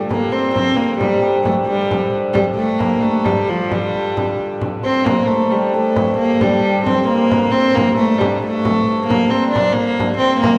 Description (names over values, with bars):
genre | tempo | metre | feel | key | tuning
medieval dance | 89 BPM (dotted quarters) | 6/8 | straight | G minor | A4 = 444 Hz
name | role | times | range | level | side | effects
hammered dulcimer | second line | 0.0-10.6 s | F4 to C5 | -23 LUFS | equal | none
rich hurdy-gurdy | drone | 0.0-10.6 s | G2 to D3 | -28 LUFS | equal | none
clear viola da gamba | melody | 0.1-10.6 s | F3 to D4 | -19 LUFS | equal | none
frame drum | percussion | 0.1-10.6 s | none | -26 LUFS | equal | none
room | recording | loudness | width
wet recital hall reverb, RT60 1.4 s | recorded in a church or concert hall | -17 LUFS | mono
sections
0.0-5.1 A section; 5.1-10.6 B section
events
none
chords
none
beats
0.32 | 1.00 1.68 | 2.36 3.04 | 3.71 4.39 | 5.07 5.74 | 6.42 7.09 | 7.76 8.43 | 9.10 9.77 | 10.44